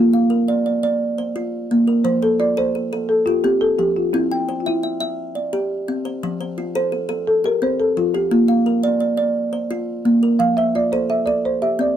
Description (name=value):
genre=southern african traditional, mbira-style interlocking cycle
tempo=115 BPM (dotted quarters)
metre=12/8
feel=straight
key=F major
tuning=A4 = 440 Hz
part: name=folk marimba with soft mallets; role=melody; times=0.0-12.0 s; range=E4 to F5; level=-19 LUFS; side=equal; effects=none
part: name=kalimba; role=arpeggios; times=0.0-12.0 s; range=F3 to G5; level=-19 LUFS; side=right 1 dB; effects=none
room=light reverb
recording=close, detailed microphones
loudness=-17 LUFS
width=side -10 dB against mid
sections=0.0-2.1 A section; 2.1-12.0 B section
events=none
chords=0.0 Bb; 2.1 F; 4.1 C; 6.2 F; 8.3 Bb; 10.4 F